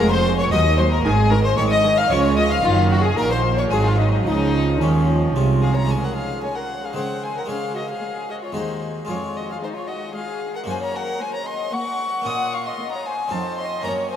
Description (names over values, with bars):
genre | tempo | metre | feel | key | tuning
classical, baroque-style concerto movement with solo episodes | 113 BPM | 3/4 | straight | Db major | A4 = 445 Hz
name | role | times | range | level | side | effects
rich chamber violin section | melody | 0.0-14.2 s | C5 to F6 | -31 LUFS | left 7 dB | none
warm violin | melody | 0.0-14.2 s | Db4 to Eb6 | -25 LUFS | left 2 dB | none
rich chamber violin section | second line | 0.0-14.2 s | Db4 to Gb5 | -25 LUFS | left 3 dB | none
harpsichord | accompaniment | 0.0-14.2 s | Eb2 to Bb4 | -29 LUFS | left 1 dB | none
warm chamber viola section | accompaniment | 0.0-13.7 s | Eb3 to Eb4 | -27 LUFS | right 1 dB | none
rich studio double bass section | bass | 0.0-5.9 s | F1 to Eb2 | -22 LUFS | right 2 dB | none
warm chamber cello section | bass | 0.0-14.2 s | Eb2 to Eb3 | -23 LUFS | right 3 dB | none
room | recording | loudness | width
wet cathedral reverb, RT60 6.4 s | in a vast, echoing space | -18 LUFS | side -9 dB against mid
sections
0.0-5.9 A section; 5.9-14.2 B section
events
none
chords
0.0 Db/F; 0.5 Ebm; 1.0 Ab; 2.1 Db; 2.6 Ebm/Gb; 3.7 Ab7; 4.3 Db; 5.9 Db5; 7.0 Ab7/Db; 7.5 Db5; 8.6 Ab7/Eb; 9.1 Gbmaj7sus2/F; 10.7 Gb; 12.3 Bbm; 13.3 F7